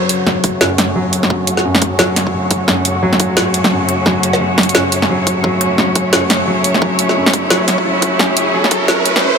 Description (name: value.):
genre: half-time drum and bass.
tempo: 174 BPM.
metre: 4/4.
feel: swing 59% on 16ths, half-time.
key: F# minor.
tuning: A4 = 440 Hz.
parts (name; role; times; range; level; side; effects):
clear symphonic cello section; sustained chords; 0.0-9.4 s; C#3 to C#5; -18 LUFS; equal; vintage 12-bit sampler grit, sidechain pumping, low-pass filter.
felt-muted upright piano; arpeggios; 0.0-9.4 s; F#2 to F#3; -18 LUFS; left 1 dB; low-pass filter, tape echo.
drum and bass drum kit; drums; 0.1-9.2 s; hi-hat, snare drum; -15 LUFS; equal; none.
electronic kick drum; drums; 0.4-8.8 s; none; -21 LUFS; equal; high-pass filter on kick, high-pass filter on room.
riser; sound effects; 6.0-9.4 s; none; -21 LUFS; right 1 dB; none.
room: light reverb, digital ambience.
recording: high-pass filter.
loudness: -11 LUFS.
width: side -6 dB against mid.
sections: 0.0-9.4 A section.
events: build-up 0.0-9.4; filter sweep on cello section 0.0-9.4; filter sweep on felt piano 0.0-9.4; riser 6.0-9.4.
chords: 0.0 F#m.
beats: 0.27 0.61 0.96 | 1.30 1.65 1.99 2.33 | 2.68 3.02 3.37 3.71 | 4.06 4.40 4.75 5.09 | 5.44 5.78 6.13 6.47 | 6.82 7.16 7.51 7.85 | 8.20 8.54 8.89 9.23.